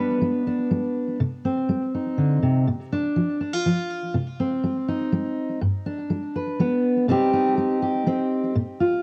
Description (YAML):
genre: folk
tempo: 122 BPM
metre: 3/4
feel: straight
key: C minor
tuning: A4 = 440 Hz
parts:
  - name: fingerpicked steel-string acoustic guitar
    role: solo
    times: 0.0-9.0 s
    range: G2 to B4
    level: -24 LUFS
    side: equal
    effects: cassette tape, tape echo
room: moderate studio ambience, RT60 0.5 s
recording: home recording on cassette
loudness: -24 LUFS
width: mono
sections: 0.0-5.6 A section; 5.6-9.0 B section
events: none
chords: 0.0 G; 1.2 Cm; 2.7 Bb; 4.1 Cm; 5.6 G; 7.1 Cm